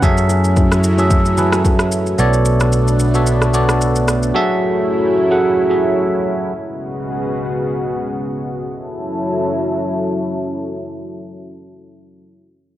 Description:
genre	amapiano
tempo	111 BPM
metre	4/4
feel	swing 55% on 16ths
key	F# minor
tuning	A4 = 440 Hz
part	bell-like tine electric piano	accompaniment	0.0-6.5 s	F#3 to F#5	-16 LUFS	right 1 dB	phaser, low-pass filter
part	lush unison pad	sustained chords	0.0-12.3 s	C#3 to A4	-20 LUFS	left 1 dB	chorus, sidechain pumping, low-pass filter
part	fingered electric bass	bass	0.0-4.3 s	B1 to F#2	-16 LUFS	equal	none
part	deep house drum kit	drums	0.0-4.3 s	kick drum, rim click, shaker	-18 LUFS	equal	none
part	congas and bongos	percussion	0.0-1.8 s	none	-28 LUFS	left 4 dB	none
room	little or no reverb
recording	dry, gritty hardware recording, cassette tape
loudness	-14 LUFS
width	side -13 dB against mid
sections	0.0-8.7 A section; 8.7-12.8 B section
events	filter sweep 0.0-8.7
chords	0.0 F#m7; 2.2 Bm9; 4.3 F#m7; 6.5 C#7sus4; 8.7 F#m7

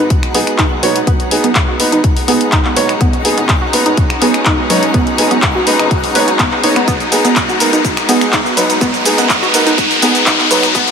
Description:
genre	progressive house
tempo	124 BPM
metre	4/4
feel	straight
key	B major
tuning	A4 = 442 Hz
part	rich studio string section	sustained chords	0.0-10.9 s	G#3 to D#4	-19 LUFS	left 3 dB	sidechain pumping
part	analog pluck	arpeggios	0.0-10.8 s	F#3 to B4	-17 LUFS	right 1 dB	chorus, sidechain pumping, dub echo
part	clear baby grand piano	stabs	0.0-10.6 s	B3 to C#5	-17 LUFS	right 2 dB	sidechain pumping, dub echo
part	fat analog bass	bass	0.0-10.9 s	F#1 to B1	-28 LUFS	equal	none
part	riser	sound effects	2.2-10.9 s	none	-18 LUFS	left 1 dB	none
part	twinkling granular texture	texture	0.0-10.9 s	F#4 to F#5	-25 LUFS	equal	built-in reverb, sidechain pumping
part	electronic kick drum	drums	0.1-10.9 s	none	-16 LUFS	equal	studio reverb
part	house drum kit	drums	0.1-10.9 s	finger snaps, handclaps, hi-hat, shaker	-16 LUFS	left 1 dB	high-pass filter on hats, studio reverb, high-pass filter on snare, high-pass filter on perc
room	moderate lush hall reverb, RT60 1.8 s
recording	high-pass filter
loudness	-10 LUFS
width	side -6 dB against mid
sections	0.0-10.9 A section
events	build-up 0.0-10.9; filter sweep on synth pluck 0.0-10.9; filter sweep 0.0-10.9; riser 2.2-10.9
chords	0.0 B6; 6.9 G#m

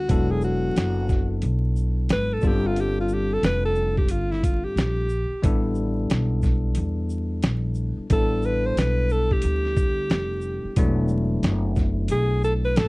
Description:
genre	hip hop, jazz-hop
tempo	90 BPM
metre	4/4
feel	swing 62% on 16ths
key	A minor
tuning	A4 = 440 Hz
part	clear alto saxophone	melody	0.0-12.9 s	E4 to C5	-26 LUFS	equal	slapback echo
part	bell-like tine electric piano	accompaniment	0.0-12.9 s	F#3 to A4	-28 LUFS	left 2 dB	none
part	upright bass	bass	0.0-12.9 s	E1 to E2	-24 LUFS	equal	none
part	boom bap sampler-style drum kit	drums	0.1-12.9 s	hi-hat, kick drum, shaker, snare drum	-23 LUFS	equal	none
room	little or no reverb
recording	dry, close 1970s-style studio recording, vinyl crackle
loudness	-20 LUFS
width	side -23 dB against mid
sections	0.0-12.9 A section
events	alto saxophone solo 0.0-12.9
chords	0.1 E9sus4; 2.4 G9sus4; 5.4 A9sus4; 10.8 E9sus4

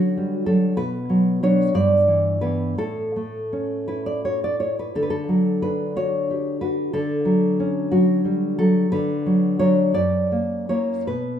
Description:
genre	romantic piece for solo classical guitar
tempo	51-66 BPM (dotted quarters)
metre	6/8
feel	rubato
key	unclear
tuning	A4 = 440 Hz
part	nylon-string guitar	solo	0.0-11.4 s	F#2 to D5	-19 LUFS	equal	none
room	moderate recital hall reverb, RT60 1.7 s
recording	minimal, uncompressed stereo recording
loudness	-19 LUFS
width	side -9 dB against mid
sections	0.0-11.4 A section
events	none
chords	0.0 F#m/D; 0.8 Bm; 1.7 Em7/G; 2.8 A; 4.9 D; 6.9 F#m/D; 8.9 Bm/D; 9.9 F#7

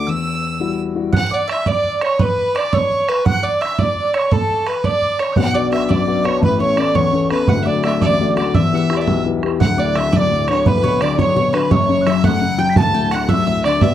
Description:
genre	celtic folk, Celtic jig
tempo	114 BPM (dotted quarters)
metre	6/8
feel	straight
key	unclear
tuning	A4 = 440 Hz
part	rich fiddle	melody	0.0-13.9 s	A4 to E6	-19 LUFS	right 1 dB	none
part	mandolin	second line	0.0-13.9 s	A4 to E6	-25 LUFS	right 4 dB	none
part	mellow tin whistle	second line	0.0-13.9 s	A5 to B6	-27 LUFS	left 1 dB	tape echo
part	dark baby grand piano	accompaniment	0.0-1.1, 5.4-13.9 s	D1 to A4	-18 LUFS	left 6 dB	none
part	bodhran	percussion	1.1-13.9 s	none	-20 LUFS	right 4 dB	none
room	small room reverb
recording	dry, close 1970s-style studio recording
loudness	-14 LUFS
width	side -11 dB against mid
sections	0.0-1.1 A section; 1.1-9.6 B section; 9.6-13.9 B section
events	none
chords	0.1 Emadd9; 1.1 N.C.; 5.4 Bm; 6.4 Aadd9; 7.5 D; 8.5 Em; 9.6 D; 10.7 Bm/D; 11.7 F#m; 12.8 D

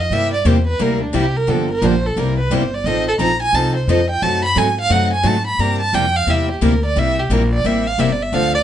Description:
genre	acoustic string swing (jazz manouche)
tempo	175 BPM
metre	4/4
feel	swing 62% on 8ths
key	C mixolydian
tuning	A4 = 439 Hz
part	warm violin	melody	0.0-8.6 s	D4 to B5	-19 LUFS	right 2 dB	none
part	upright bass	bass	0.0-8.6 s	G1 to Ab2	-20 LUFS	left 1 dB	none
part	picked acoustic archtop guitar	accompaniment	0.1-8.5 s	C3 to A4	-21 LUFS	left 4 dB	none
part	picked steel-string acoustic guitar	accompaniment	0.1-8.5 s	C3 to A4	-24 LUFS	right 7 dB	none
room	moderate studio reverb, RT60 0.5 s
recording	nothing above 10.5 kHz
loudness	-14 LUFS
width	side -10 dB against mid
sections	0.0-8.6 A section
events	violin solo 0.0-8.6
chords	0.1 C7; 1.5 Gm7; 2.2 C7; 2.8 F7; 4.2 F#dim7; 5.6 C7

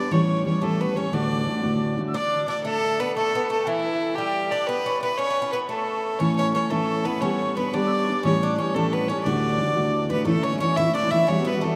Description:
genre	celtic folk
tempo	118 BPM (dotted quarters)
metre	6/8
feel	straight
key	unclear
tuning	A4 = 443 Hz
part	rich fiddle	melody	0.0-11.8 s	E4 to E5	-28 LUFS	equal	none
part	Irish bouzouki	second line	0.0-11.8 s	E3 to E4	-33 LUFS	equal	none
part	fingerpicked steel-string acoustic guitar	accompaniment	0.0-2.2, 6.2-11.8 s	D2 to G4	-26 LUFS	equal	none
part	breathy mid whistle	second line	0.1-10.1 s	E5 to E6	-35 LUFS	equal	none
room	wet cathedral reverb, RT60 4.8 s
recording	in a vast, echoing space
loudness	-23 LUFS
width	mono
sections	0.0-2.1 A section; 2.1-10.3 A section; 10.3-11.8 B section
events	none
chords	0.1 A7; 1.1 D; 2.1 N.C.; 5.2 A; 7.2 G; 8.2 A7; 9.3 D; 10.3 A

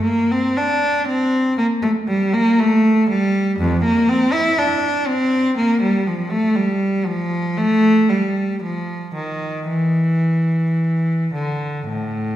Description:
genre	classical, baroque-style suite movement for unaccompanied cello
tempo	54-61 BPM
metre	4/4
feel	rubato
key	unclear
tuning	A4 = 439 Hz
part	rich cello	solo	0.0-12.4 s	F2 to E4	-16 LUFS	equal	none
room	wet recital hall reverb, RT60 1.7 s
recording	heard from further back in the room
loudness	-16 LUFS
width	side -12 dB against mid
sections	0.0-12.4 A section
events	none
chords	none

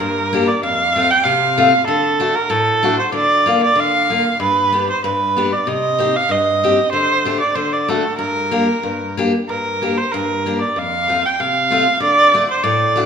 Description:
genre	alpine folk, alpine dance band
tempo	95 BPM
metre	2/4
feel	rubato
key	G minor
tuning	A4 = 440 Hz
part	rich erhu	melody	0.0-13.1 s	A4 to G5	-16 LUFS	right 2 dB	none
part	picked steel-string acoustic guitar	accompaniment	0.0-13.1 s	F2 to G4	-19 LUFS	left 4 dB	none
room	wet recital hall reverb, RT60 1.4 s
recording	minimal, uncompressed stereo recording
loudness	-14 LUFS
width	side -7 dB against mid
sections	0.0-9.5 A section; 9.5-13.1 A section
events	none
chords	0.0 Gm; 0.6 F; 1.9 D; 3.1 Bb/D; 4.4 G; 5.7 Cm; 6.9 D7sus4; 7.6 D; 8.2 Gm; 10.8 F; 12.0 D

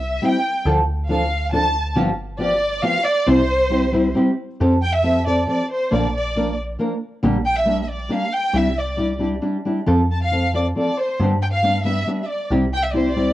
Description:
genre	mexican folk, mariachi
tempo	137 BPM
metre	3/4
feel	straight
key	C major, F major from 4.6 s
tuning	A4 = 439 Hz
part	rich chamber violin section	melody	0.0-13.3 s	C5 to A5	-21 LUFS	equal	cassette tape, plate reverb
part	metallic FM bass	bass	0.0-13.3 s	G1 to G2	-24 LUFS	equal	none
part	nylon-string guitar	accompaniment	0.2-13.3 s	G2 to Bb4	-20 LUFS	equal	cassette tape, plate reverb
room	moderate small room reverb, RT60 0.5 s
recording	home recording on cassette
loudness	-17 LUFS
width	side -14 dB against mid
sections	0.0-4.6 A section; 4.6-13.3 B section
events	none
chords	0.0 C; 0.7 Dm; 2.0 G7; 3.3 C; 4.6 Fadd9; 5.9 Bb; 7.2 Gm/Bb; 8.5 Cadd9; 9.9 F; 11.2 G; 12.5 C

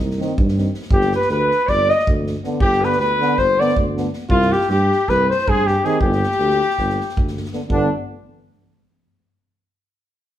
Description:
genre	balkan folk, Balkan brass band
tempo	318 BPM (eighths)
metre	9/8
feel	straight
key	G phrygian dominant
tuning	A4 = 440 Hz
part	mellow tuba	bass	0.0-7.9 s	G1 to G2	-22 LUFS	right 1 dB	none
part	street-band drum kit	percussion	0.1-7.9 s	kick drum, snare drum	-23 LUFS	equal	none
part	mellow euphonium	accompaniment	0.2-7.9 s	B3 to C4	-27 LUFS	left 5 dB	none
part	warm euphonium	accompaniment	0.2-7.9 s	D3 to Eb3	-26 LUFS	right 5 dB	none
part	warm flugelhorn	melody	0.9-7.9 s	D4 to Eb5	-18 LUFS	equal	none
part	bright clarinet	second line	1.0-7.9 s	D4 to Eb5	-25 LUFS	left 4 dB	none
room	wet large studio reverb, RT60 0.9 s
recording	band playing live in one room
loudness	-16 LUFS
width	side -11 dB against mid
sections	0.0-7.7 A section; 7.7-9.4 B section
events	none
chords	0.0 Cm; 0.9 G; 4.3 C5; 6.0 G5; 7.7 G

